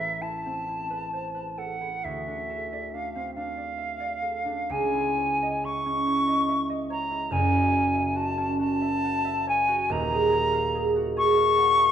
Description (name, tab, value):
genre	classical, impressionist duo for flute and harp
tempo	46 BPM (dotted quarters)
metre	6/8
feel	uneven beats, rubato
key	unclear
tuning	A4 = 441 Hz
part	silver concert flute	melody	0.0-11.9 s	E5 to C#6	-25 LUFS	left 2 dB	none
part	concert harp	accompaniment	0.0-11.9 s	D#1 to F#5	-27 LUFS	right 2 dB	none
room	moderate recital hall reverb, RT60 1.7 s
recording	dark, warm production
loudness	-23 LUFS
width	side -9 dB against mid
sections	0.0-11.9 A section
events	none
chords	0.0 Amadd9; 2.0 Dm7; 4.7 C#madd9; 7.3 F#m7; 9.9 D#m11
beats	0.68 | 2.04 3.37 | 4.70 6.08 | 7.33 8.61 | 9.91 11.18